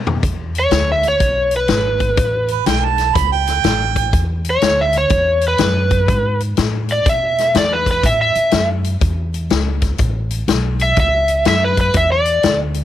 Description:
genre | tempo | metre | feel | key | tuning
electric blues shuffle | 123 BPM | 4/4 | swing 65% on 8ths | unclear | A4 = 440 Hz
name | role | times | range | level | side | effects
upright bass | bass | 0.0-12.8 s | G#1 to B2 | -20 LUFS | equal | none
swinging big-band drum kit | drums | 0.1-12.8 s | hi-hat, kick drum, snare drum, toms | -19 LUFS | left 3 dB | none
overdriven slide guitar | melody | 0.6-12.6 s | B4 to E5 | -16 LUFS | equal | none
warm harmonica | second line | 2.5-4.3 s | B4 to B5 | -18 LUFS | right 16 dB | overdrive
room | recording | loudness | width
small room ambience | 1960s-style stereo | -14 LUFS | side -12 dB against mid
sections
0.2-12.8 A section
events
drum fill 0.0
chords
0.2 E7; 2.2 A7; 4.1 E7; 8.0 A; 11.9 E7(no3)

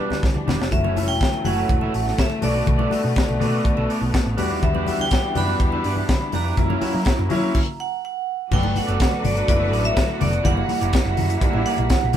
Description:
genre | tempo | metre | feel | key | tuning
disco | 123 BPM | 4/4 | straight | unclear | A4 = 441 Hz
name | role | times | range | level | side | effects
vibraphone with hard mallets | melody | 0.0-12.2 s | B4 to B5 | -26 LUFS | right 2 dB | none
clear concert grand piano | accompaniment | 0.0-12.2 s | E3 to F#4 | -26 LUFS | left 3 dB | none
electric guitar at the edge of break-up | accompaniment | 0.0-12.2 s | A#3 to E5 | -31 LUFS | right 5 dB | none
clear studio string section | sustained chords | 0.0-12.2 s | D3 to B4 | -28 LUFS | equal | none
picked electric bass with an envelope filter | bass | 0.1-12.2 s | E1 to F#3 | -24 LUFS | equal | none
tight funk drum kit | drums | 0.1-12.2 s | crash cymbal, hi-hat, kick drum, snare drum | -22 LUFS | equal | none
congas | percussion | 0.1-12.2 s | none | -29 LUFS | left 3 dB | none
room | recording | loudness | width
moderate studio ambience, RT60 0.5 s | band playing live in one room | -18 LUFS | side -10 dB against mid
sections
0.7-8.5 A section; 8.5-12.2 B section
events
drum fill 0.0-0.7; stop 7.5-8.5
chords
0.0 Em7; 0.7 F#m7; 2.4 Bm7; 4.4 Em7; 6.6 F#7; 8.5 Gmaj9; 10.5 F#7b9b13

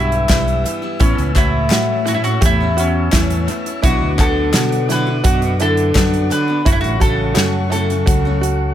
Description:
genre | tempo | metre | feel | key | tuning
indie folk with a building arrangement | 85 BPM | 4/4 | straight | B minor | A4 = 444 Hz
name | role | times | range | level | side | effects
mandolin | melody | 0.0-8.7 s | C#4 to B4 | -20 LUFS | left 3 dB | analog delay
warm cello | second line | 0.0-8.7 s | E2 to D3 | -23 LUFS | right 4 dB | none
picked steel-string acoustic guitar | accompaniment | 0.0-8.7 s | E2 to F#4 | -25 LUFS | left 6 dB | none
mellow tonewheel organ | sustained chords | 0.0-8.7 s | A4 to E6 | -30 LUFS | left 1 dB | slow rotary speaker
open-back banjo | arpeggios | 0.0-8.7 s | D4 to G4 | -25 LUFS | right 8 dB | analog delay
fingered electric bass | bass | 0.0-8.7 s | F#1 to B2 | -19 LUFS | equal | none
natural country drum kit | drums | 0.1-8.6 s | hi-hat, kick drum, snare drum | -17 LUFS | equal | none
group handclap | percussion | 0.3-7.5 s | none | -27 LUFS | left 7 dB | analog delay
room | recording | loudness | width
small room ambience | echo-heavy mix | -13 LUFS | side -11 dB against mid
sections
0.0-8.7 A section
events
none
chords
0.0 Em; 1.0 A; 3.8 Bm; 6.7 F#m

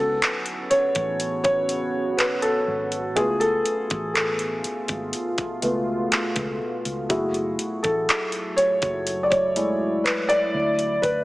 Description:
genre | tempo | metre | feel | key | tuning
contemporary R&B | 61 BPM | 4/4 | straight | unclear | A4 = 440 Hz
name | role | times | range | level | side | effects
felt-muted upright piano | accompaniment | 0.0-11.2 s | G#3 to D5 | -22 LUFS | equal | none
deep dark ambient pad | sustained chords | 0.3-11.2 s | A2 to F#4 | -30 LUFS | equal | chorus, built-in reverb
vintage muted fingered electric bass | bass | 0.0-11.2 s | F#1 to D2 | -35 LUFS | equal | none
trap drum kit | drums | 0.2-11.2 s | handclaps, hi-hat, kick drum | -25 LUFS | equal | none
room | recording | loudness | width
moderate lush hall reverb, RT60 2.0 s | small speaker sound | -21 LUFS | side -18 dB against mid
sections
0.0-11.2 A section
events
felt piano solo 0.0-11.2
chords
0.0 A69; 3.2 C#7b13; 7.1 F#m9; 10.5 Dmaj9

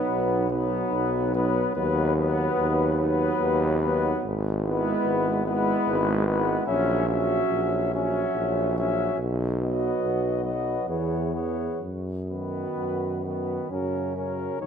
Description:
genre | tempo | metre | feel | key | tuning
classical, hymn-like piece for brass band | 62-74 BPM | 3/4 | rubato | B major from 4.2 s | A4 = 440 Hz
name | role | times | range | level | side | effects
mellow flugelhorn | melody | 0.0-14.7 s | A#4 to E5 | -31 LUFS | left 8 dB | none
mellow French horn section | second line | 0.0-14.7 s | D#4 to G#4 | -32 LUFS | right 11 dB | none
mellow euphonium | accompaniment | 0.0-14.7 s | C#3 to G#3 | -32 LUFS | right 2 dB | none
mellow trombone section | accompaniment | 0.0-14.7 s | B3 to D#4 | -30 LUFS | left 3 dB | none
warm tuba | bass | 0.1-14.7 s | G#1 to F#2 | -27 LUFS | equal | none
room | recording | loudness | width
moderate concert hall reverb, RT60 2.3 s | none | -23 LUFS | side -7 dB against mid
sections
0.0-14.6 A section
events
none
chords
0.0 B; 1.8 B/D#; 4.2 E/G#; 6.7 F#7/A#; 9.2 B; 10.9 E6; 11.8 B/F#; 13.7 F#

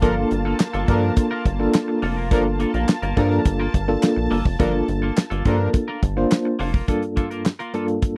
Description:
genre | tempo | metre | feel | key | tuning
early-eighties boogie funk | 105 BPM | 4/4 | straight | G minor | A4 = 441 Hz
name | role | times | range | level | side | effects
analog synth brass | second line | 0.0-5.7 s | F3 to Bb4 | -27 LUFS | equal | chorus
FM electric piano with tremolo | accompaniment | 0.0-8.2 s | G2 to C5 | -25 LUFS | equal | none
lush unison pad | sustained chords | 0.0-6.8 s | Bb3 to A5 | -34 LUFS | equal | chorus
clean electric guitar | riff | 0.0-8.1 s | Bb3 to Bb4 | -32 LUFS | equal | lush chorus
rubbery square bass | bass | 0.0-6.8 s | F1 to G2 | -26 LUFS | equal | none
damped 70s drum kit | drums | 0.0-8.2 s | handclaps, hi-hat, kick drum, snare drum | -21 LUFS | equal | none
room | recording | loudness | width
little or no reverb | dry, close 1970s-style studio recording | -21 LUFS | mono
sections
0.0-6.9 A section; 6.9-8.2 B section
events
none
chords
0.0 Gm9

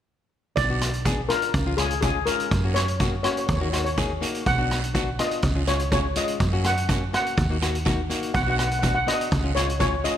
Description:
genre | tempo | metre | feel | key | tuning
calypso | 124 BPM | 4/4 | straight | unclear | A4 = 441 Hz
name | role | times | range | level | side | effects
steel pan | melody | 0.6-10.2 s | G#4 to F#5 | -26 LUFS | left 1 dB | tape echo
hollow-body short-scale fingered electric bass | bass | 0.6-10.1 s | B1 to F#2 | -27 LUFS | right 1 dB | none
street-band drum kit | drums | 0.6-10.2 s | hi-hat, kick drum, rim click | -26 LUFS | equal | none
guiro | percussion | 0.6-10.2 s | none | -36 LUFS | right 8 dB | none
nylon-string guitar | accompaniment | 0.7-10.2 s | G#3 to G#4 | -30 LUFS | left 4 dB | none
room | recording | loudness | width
light reverb | none | -21 LUFS | side -10 dB against mid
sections
0.6-10.2 A section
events
none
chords
0.6 Bm; 1.5 C#; 2.5 F#; 3.5 D#m; 4.5 Bm; 5.4 C#; 6.4 F#; 7.4 D#m; 8.3 Bm; 9.3 C#

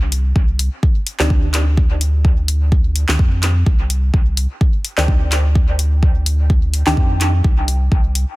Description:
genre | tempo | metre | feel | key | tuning
dub techno | 127 BPM | 4/4 | swing 55% on 16ths | C minor | A4 = 440 Hz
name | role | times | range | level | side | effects
warm sub bass | bass | 0.0-8.2 s | C2 to F2 | -16 LUFS | equal | sidechain pumping
deep house drum kit | drums | 0.1-8.3 s | handclaps, hi-hat | -23 LUFS | left 1 dB | dub echo
electronic kick drum | drums | 0.4-8.0 s | none | -14 LUFS | equal | none
filtered dub chord stab | stabs | 1.2-7.1 s | Eb3 to G4 | -24 LUFS | equal | chorus, phaser, sidechain pumping, dub echo
room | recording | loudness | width
digital ambience | dense, heavily limited modern master | -13 LUFS | side -20 dB against mid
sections
0.0-8.4 A section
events
none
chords
0.0 Cmadd9

